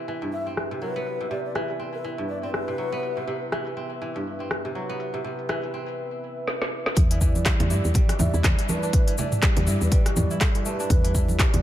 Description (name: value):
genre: afro house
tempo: 122 BPM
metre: 4/4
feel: swing 58% on 16ths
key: E minor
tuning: A4 = 440 Hz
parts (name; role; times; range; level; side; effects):
- dark analog pad; sustained chords; 0.0-11.6 s; G3 to E5; -33 LUFS; equal; chorus, vintage 12-bit sampler grit, sidechain pumping
- kora; arpeggios; 0.0-11.6 s; G2 to E4; -32 LUFS; right 1 dB; sidechain pumping, ping-pong delay
- afro-pop drum kit; drums; 0.1-11.6 s; handclaps, hi-hat, rim click, shaker, snare drum, toms; -28 LUFS; equal; low-pass filter on hats, low-pass filter on snare, low-pass filter on perc, low-pass filter on toms, low-pass filter on room
- breathy bass bansuri; melody; 0.3-3.2, 8.2-11.4 s; A4 to E5; -33 LUFS; equal; ping-pong delay
- woody FM bass; bass; 7.0-11.6 s; E2 to G2; -24 LUFS; equal; sidechain pumping
- electronic kick drum; drums; 7.0-11.5 s; none; -21 LUFS; equal; none
- congas; percussion; 7.0-11.6 s; none; -30 LUFS; right 2 dB; none
room: light reverb, digital ambience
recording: none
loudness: -22 LUFS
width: side -13 dB against mid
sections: 0.0-7.0 A section; 7.0-11.6 B section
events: drum fill 6.5-7.0; drop 7.0-11.6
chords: 0.0 Cmaj7; 7.0 Em7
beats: 0.08 0.57 | 1.07 1.56 2.05 2.54 | 3.03 3.53 4.02 4.51 | 5.00 5.49 5.99 6.48 | 6.97 7.46 7.95 8.44 | 8.94 9.43 9.92 10.41 | 10.90 11.39